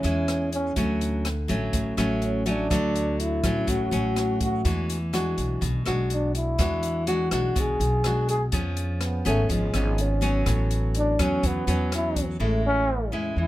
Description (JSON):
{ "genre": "bossa nova", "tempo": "124 BPM", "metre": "4/4", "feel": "straight", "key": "A major", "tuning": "A4 = 443 Hz", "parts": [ { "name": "breathy trombone", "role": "melody", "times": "0.0-13.5 s", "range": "G#3 to G#4", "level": "-27 LUFS", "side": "equal", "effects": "none" }, { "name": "nylon-string guitar", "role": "accompaniment", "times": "0.0-13.5 s", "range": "A2 to G#4", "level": "-27 LUFS", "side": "left 1 dB", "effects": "none" }, { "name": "upright bass", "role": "bass", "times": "0.0-13.5 s", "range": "G#1 to E#2", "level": "-27 LUFS", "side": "equal", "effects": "none" }, { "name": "open jazz drum kit", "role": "drums", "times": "0.0-12.3 s", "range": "hi-hat, kick drum, rim click", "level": "-31 LUFS", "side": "equal", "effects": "none" } ], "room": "little or no reverb", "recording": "close, detailed microphones", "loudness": "-22 LUFS", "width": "side -15 dB against mid", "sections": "0.0-12.4 A section; 12.4-13.5 B section", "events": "trombone solo 0.0-12.4", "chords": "0.0 Amaj7 (rootless); 0.8 Dmaj7; 4.6 E9; 8.5 C#7; 10.5 A69; 12.4 Amaj7", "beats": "0.28 | 0.77 1.25 1.74 2.22 | 2.71 3.19 3.68 4.16 | 4.64 5.13 5.62 6.10 | 6.58 7.07 7.55 8.04 | 8.52 9.01 9.49 9.98 | 10.46 10.95 11.43 11.92 | 12.40 12.88 13.37" }